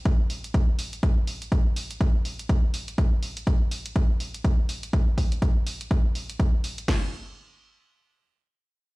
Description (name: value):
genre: piano house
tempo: 123 BPM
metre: 4/4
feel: swing 58% on 16ths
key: none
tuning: none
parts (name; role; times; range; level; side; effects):
- electronic hi-hat; drums; 0.1-6.9 s; none; -37 LUFS; right 1 dB; none
- punchy analog drum machine; drums; 0.1-7.0 s; crash cymbal, kick drum, snare drum; -23 LUFS; equal; none
room: little or no reverb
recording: played on a big sound system in a bare room, stone room reverb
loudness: -23 LUFS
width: side -23 dB against mid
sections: 0.0-6.9 A section; 6.9-9.0 B section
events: none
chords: none